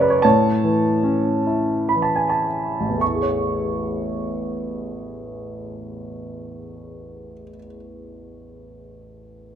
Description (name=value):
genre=classical, lyrical solo piano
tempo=53-81 BPM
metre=3/4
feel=rubato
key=A major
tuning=A4 = 438 Hz
part: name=warm grand piano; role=solo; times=0.0-9.6 s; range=A1 to C#6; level=-20 LUFS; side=right 1 dB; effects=none
room=wet recital hall reverb, RT60 1.8 s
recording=minimal, uncompressed stereo recording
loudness=-18 LUFS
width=side -9 dB against mid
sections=0.0-3.0 A section; 3.0-9.6 B section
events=slowing down 0.0-3.0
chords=0.2 A; 3.0 Amaj7